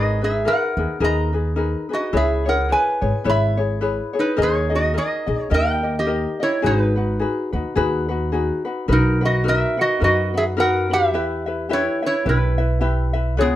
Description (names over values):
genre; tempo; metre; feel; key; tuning
Hawaiian; 107 BPM; 4/4; swing 58% on 8ths; G# minor, B major from 8.9 s; A4 = 440 Hz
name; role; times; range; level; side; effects
metal-body resonator slide guitar; melody; 0.0-13.6 s; B3 to B5; -20 LUFS; right 1 dB; plate reverb
ukulele; accompaniment; 0.0-13.6 s; D#4 to E5; -23 LUFS; left 4 dB; none
upright bass; bass; 0.0-13.6 s; G#1 to F#2; -22 LUFS; right 1 dB; none
room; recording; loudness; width
moderate studio reverb, RT60 0.5 s; none; -18 LUFS; side -13 dB against mid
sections
0.0-8.9 A section; 8.9-13.6 B section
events
none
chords
0.0 G#madd9; 2.1 C#m7; 4.4 D#sus4; 5.5 D#; 6.6 G#m7; 8.9 Bmaj7; 11.1 Em